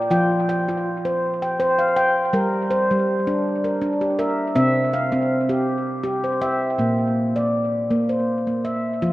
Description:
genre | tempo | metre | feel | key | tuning
world meditative, meditative tuned percussion | 81 BPM | 3/4 | straight | Bb lydian | A4 = 439 Hz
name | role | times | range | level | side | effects
handpan | solo | 0.0-9.1 s | Bb2 to G5 | -19 LUFS | equal | dub echo
room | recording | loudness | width
wet spring reverb, RT60 1.8 s, studio reverb | echo-heavy mix | -19 LUFS | side -17 dB against mid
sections
0.0-6.8 A section; 6.8-9.1 B section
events
none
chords
0.1 F5; 2.3 Gm; 4.6 C; 6.8 Bb

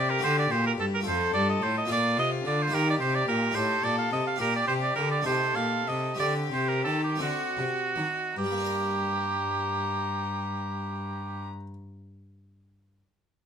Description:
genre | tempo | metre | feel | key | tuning
classical, baroque-style sonata movement with continuo | 50-72 BPM (dotted quarters) | 6/8 | straight | G minor | A4 = 441 Hz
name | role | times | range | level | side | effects
warm violin | melody | 0.0-11.5 s | F4 to Bb5 | -34 LUFS | left 7 dB | none
bright oboe | second line | 0.0-11.5 s | F#4 to F5 | -28 LUFS | right 4 dB | none
harpsichord | accompaniment | 0.0-11.7 s | F2 to Bb4 | -32 LUFS | left 1 dB | none
rich cello | bass | 0.0-11.5 s | F2 to Eb3 | -31 LUFS | left 1 dB | none
room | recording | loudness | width
moderate studio reverb, RT60 0.6 s | minimal, uncompressed stereo recording | -25 LUFS | side -7 dB against mid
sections
0.0-8.4 A section; 8.4-13.1 B section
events
slowing down 3.6-8.4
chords
0.2 D; 1.1 F; 1.9 Bbmaj7; 2.7 Eb; 3.6 Am7b5; 4.4 Gm/Bb; 5.3 Am7b5; 6.2 D7sus4; 7.2 D7; 8.4 Gm

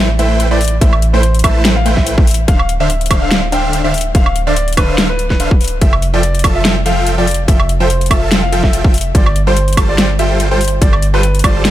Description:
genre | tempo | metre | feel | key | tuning
future bass | 144 BPM | 4/4 | swing 54% on 16ths, half-time | unclear | A4 = 442 Hz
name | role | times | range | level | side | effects
warm concert grand piano | melody | 0.0-11.7 s | B4 to G5 | -19 LUFS | equal | sidechain pumping, ping-pong delay
supersaw chords | riff | 0.0-11.7 s | D3 to A5 | -18 LUFS | right 1 dB | cassette tape, sidechain pumping
long sustained 808-style bass | bass | 0.0-11.7 s | D1 to A1 | -15 LUFS | equal | sidechain pumping
dubstep drum kit | drums | 0.2-11.7 s | hi-hat, snare drum, woodblock | -17 LUFS | equal | none
electronic kick drum | drums | 0.8-11.5 s | none | -12 LUFS | equal | none
room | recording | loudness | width
digital ambience | none | -10 LUFS | side -13 dB against mid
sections
0.0-11.7 A section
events
none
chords
0.0 Am9; 2.5 Dm9; 5.8 Fmaj9; 9.1 G9sus4

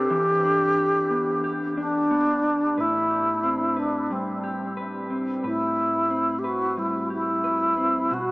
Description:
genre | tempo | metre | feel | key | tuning
dream pop | 90 BPM | 4/4 | straight | A dorian | A4 = 441 Hz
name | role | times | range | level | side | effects
alto flute | melody | 0.0-8.3 s | C4 to G4 | -22 LUFS | equal | none
mellow electric guitar | arpeggios | 0.0-8.3 s | A2 to B4 | -28 LUFS | equal | wide subtle chorus, digital delay
room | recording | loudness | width
wet huge ambient reverb, RT60 7.0 s | small speaker sound | -21 LUFS | side -23 dB against mid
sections
0.0-2.8 A section; 2.8-8.3 B section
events
none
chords
0.1 Em7; 2.8 Am9

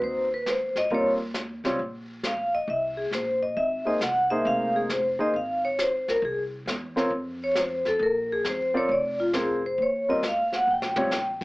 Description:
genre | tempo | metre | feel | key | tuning
jazz, small-group swing and bop | 135 BPM | 4/4 | swing 66% on 8ths | Eb mixolydian | A4 = 437 Hz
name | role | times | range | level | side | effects
vibraphone with medium hard mallets | melody | 0.0-11.4 s | F4 to G5 | -24 LUFS | equal | none
warm grand piano | accompaniment | 0.0-11.1 s | G3 to D5 | -27 LUFS | equal | none
upright bass | bass | 0.0-11.4 s | F1 to F2 | -38 LUFS | equal | none
jazz brush drum kit | drums | 0.0-11.4 s | brushed snare drum, crash cymbal, hi-hat, kick drum, snare drum, toms | -33 LUFS | equal | none
room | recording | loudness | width
light reverb | AM radio sound | -23 LUFS | side -21 dB against mid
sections
0.0-11.4 A section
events
drum fill 10.7-11.1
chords
0.0 Adim7 (rootless); 0.9 Eb9; 2.7 Abadd9; 4.5 Fm7; 8.0 Bbsus2; 9.8 Ebadd9

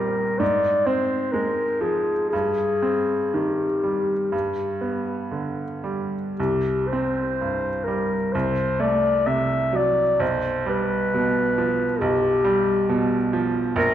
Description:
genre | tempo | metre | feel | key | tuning
classical, romantic duo for clarinet and grand piano | 54-70 BPM | 4/4 | rubato | unclear | A4 = 440 Hz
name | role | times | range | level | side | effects
mellow clarinet | melody | 0.0-13.9 s | G4 to E5 | -22 LUFS | left 2 dB | none
bright baby grand piano | accompaniment | 0.0-13.9 s | Bb1 to C4 | -24 LUFS | right 3 dB | none
room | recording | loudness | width
wet recital hall reverb, RT60 1.5 s | dark, warm production | -20 LUFS | side -11 dB against mid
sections
0.0-13.9 A section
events
none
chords
0.4 Fm/Ab; 2.3 Cm/G; 4.3 G; 6.4 C5; 8.3 C69; 10.2 G7/B

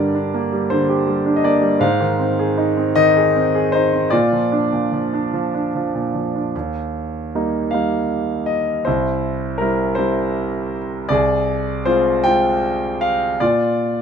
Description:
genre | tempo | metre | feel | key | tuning
classical, lyrical solo piano | 49-55 BPM (dotted quarters) | 6/8 | rubato | Eb major | A4 = 440 Hz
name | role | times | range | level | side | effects
clear concert grand piano | solo | 0.0-14.0 s | C2 to G5 | -16 LUFS | equal | none
room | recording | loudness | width
light reverb | close, detailed microphones | -16 LUFS | side -7 dB against mid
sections
0.0-6.5 A section; 6.5-14.0 B section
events
none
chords
0.0 Gm; 1.8 Ab; 4.1 Bb; 6.5 Eb; 8.9 C; 11.1 Fm/C; 13.4 Bb

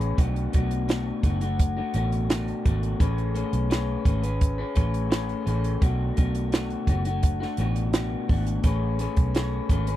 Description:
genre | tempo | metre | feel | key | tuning
indie pop, bedroom pop | 85 BPM | 4/4 | straight | B dorian | A4 = 445 Hz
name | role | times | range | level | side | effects
electric guitar through a small old amp | accompaniment | 0.0-10.0 s | B2 to B4 | -29 LUFS | left 4 dB | wide subtle chorus, warbly pitch drift
vintage muted fingered electric bass | bass | 0.0-10.0 s | F#1 to B1 | -26 LUFS | right 1 dB | none
compact cocktail drum kit | drums | 0.0-10.0 s | hi-hat, kick drum, snare drum | -23 LUFS | right 1 dB | none
room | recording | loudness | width
little or no reverb | dry, close 1970s-style studio recording | -22 LUFS | side -13 dB against mid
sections
0.0-10.0 A section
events
none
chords
0.2 Bm7; 3.0 Amaj9; 5.8 Bm7; 8.6 Amaj9

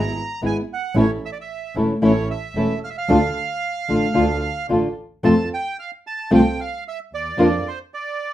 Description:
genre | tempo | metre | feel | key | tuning
tango | 112 BPM | 4/4 | rubato | D harmonic minor, F major from 5.2 s | A4 = 440 Hz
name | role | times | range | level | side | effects
bandoneon | melody | 0.0-8.3 s | C5 to Bb5 | -26 LUFS | right 4 dB | none
dark chamber string section | stabs | 0.0-7.6 s | B3 to Bb4 | -25 LUFS | right 2 dB | none
dark double bass | bass | 0.0-7.6 s | E1 to F2 | -25 LUFS | right 1 dB | none
nylon-string guitar | accompaniment | 0.4-7.5 s | C3 to F4 | -17 LUFS | left 1 dB | none
room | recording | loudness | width
moderate studio reverb, RT60 0.5 s | rough home demo mix | -18 LUFS | side -13 dB against mid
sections
0.0-5.2 A section; 5.2-8.3 B section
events
none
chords
0.0 E/G#; 1.0 A; 3.1 Dm; 5.2 F; 7.4 Bb/F

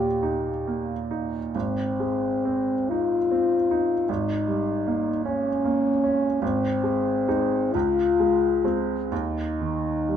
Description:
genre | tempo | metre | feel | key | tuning
classical, romantic duo for French horn and grand piano | 41-53 BPM (dotted quarters) | 6/8 | rubato | Ab major | A4 = 440 Hz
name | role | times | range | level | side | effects
mellow French horn | melody | 0.0-10.2 s | C4 to G4 | -23 LUFS | left 3 dB | none
clear baby grand piano | accompaniment | 0.0-10.2 s | Ab1 to Eb4 | -27 LUFS | right 4 dB | none
room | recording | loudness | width
moderate stone room reverb, RT60 1.3 s | dark, warm production | -22 LUFS | side -9 dB against mid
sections
0.0-10.2 A section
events
none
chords
0.0 Eb; 1.5 Ab; 4.1 Gdim/Ab; 6.4 Ab; 7.7 Dbmaj7; 9.1 N.C.

